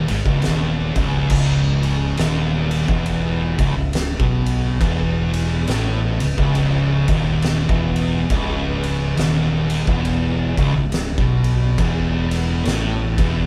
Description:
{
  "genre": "stoner and doom metal",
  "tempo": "69 BPM",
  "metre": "4/4",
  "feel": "swing 61% on 8ths",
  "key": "C# minor",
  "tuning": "A4 = 440 Hz",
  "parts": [
    { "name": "thick fuzz guitar", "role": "riff", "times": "0.0-13.5 s", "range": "C#2 to B2", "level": "-24 LUFS", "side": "equal", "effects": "distortion" },
    { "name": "thick fuzz guitar", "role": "riff", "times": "0.0-13.5 s", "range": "C#2 to B2", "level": "-26 LUFS", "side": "equal", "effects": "distortion" },
    { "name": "growling fingered electric bass", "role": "bass", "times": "0.0-13.5 s", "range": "C#1 to B1", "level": "-26 LUFS", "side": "equal", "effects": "overdrive" },
    { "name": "oversized low-tuned drum kit", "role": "drums", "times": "0.1-13.3 s", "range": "crash cymbal, kick drum, ride cymbal, snare drum", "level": "-25 LUFS", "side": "equal", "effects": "none" }
  ],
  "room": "moderate stone room reverb, RT60 1.1 s",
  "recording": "band playing live in one room",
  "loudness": "-19 LUFS",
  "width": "mono",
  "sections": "0.0-1.3 A section; 1.3-13.5 A section",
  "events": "none",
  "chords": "0.0 C#5; 1.3 C#m"
}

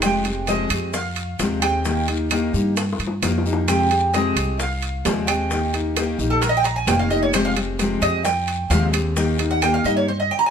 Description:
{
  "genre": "latin, Cuban son and guajira",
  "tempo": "131 BPM",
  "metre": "4/4",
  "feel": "straight",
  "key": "F minor",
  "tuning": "A4 = 444 Hz",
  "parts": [
    { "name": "fingerpicked steel-string acoustic guitar", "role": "accompaniment", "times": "0.0-10.1 s", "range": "C3 to G4", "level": "-23 LUFS", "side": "left 3 dB", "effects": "none" },
    { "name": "Cuban tres", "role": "arpeggios", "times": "0.0-10.5 s", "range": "A4 to Bb5", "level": "-22 LUFS", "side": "right 3 dB", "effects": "none" },
    { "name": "upright bass", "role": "bass", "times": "0.0-10.3 s", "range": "F1 to G2", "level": "-24 LUFS", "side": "equal", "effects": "none" },
    { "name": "bongos", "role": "percussion", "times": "0.0-10.1 s", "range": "none", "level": "-31 LUFS", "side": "left 5 dB", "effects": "none" },
    { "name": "claves", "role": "percussion", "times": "0.0-9.9 s", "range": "none", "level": "-34 LUFS", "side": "left 4 dB", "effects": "none" },
    { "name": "guiro", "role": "percussion", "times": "0.0-10.1 s", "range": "none", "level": "-37 LUFS", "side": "left 7 dB", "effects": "none" },
    { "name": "maracas", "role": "percussion", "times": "0.0-10.1 s", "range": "none", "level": "-36 LUFS", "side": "right 6 dB", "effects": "none" },
    { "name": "timbales", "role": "percussion", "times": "0.0-9.9 s", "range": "none", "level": "-28 LUFS", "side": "right 9 dB", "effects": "none" }
  ],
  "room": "moderate studio reverb, RT60 0.9 s",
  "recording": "minimal, uncompressed stereo recording, lossy compression artefacts",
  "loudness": "-18 LUFS",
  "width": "side -7 dB against mid",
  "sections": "0.0-10.5 A section",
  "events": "Cuban tres solo 0.0-10.5; drum fill 2.8-3.7",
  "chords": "0.0 Fmadd9; 1.9 Eb; 3.7 Fmadd9; 5.5 Eb; 7.3 Fmadd9; 9.2 Eb"
}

